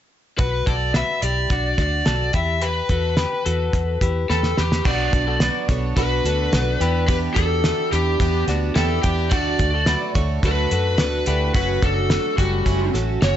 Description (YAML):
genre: jangly indie pop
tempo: 108 BPM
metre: 4/4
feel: straight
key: B minor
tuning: A4 = 440 Hz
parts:
  - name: lead guitar through a small cranked amp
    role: melody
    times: 0.4-13.4 s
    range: F#4 to E5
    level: -23 LUFS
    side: left 2 dB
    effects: overdrive, slapback echo
  - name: twelve-string electric guitar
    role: arpeggios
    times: 0.4-13.4 s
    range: G3 to C#5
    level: -28 LUFS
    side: left 4 dB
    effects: slapback echo
  - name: vintage muted fingered electric bass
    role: bass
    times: 0.4-13.4 s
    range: F#1 to F#2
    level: -23 LUFS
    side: equal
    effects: none
  - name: cloth-damped thuddy drum kit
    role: drums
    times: 0.4-13.4 s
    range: crash cymbal, hi-hat, kick drum, snare drum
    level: -22 LUFS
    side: equal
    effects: none
  - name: picked plugged-in twelve-string acoustic guitar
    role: accompaniment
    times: 4.8-13.4 s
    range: F#2 to G4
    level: -27 LUFS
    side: right 9 dB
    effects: none
room: small room ambience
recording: nothing above 7.9 kHz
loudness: -18 LUFS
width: side -10 dB against mid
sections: 0.4-4.9 A section; 4.9-13.4 B section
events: drum fill 4.3-4.9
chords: 0.4 Bm; 2.3 Em; 4.9 Bm; 6.8 Em7; 9.3 D; 11.5 F#m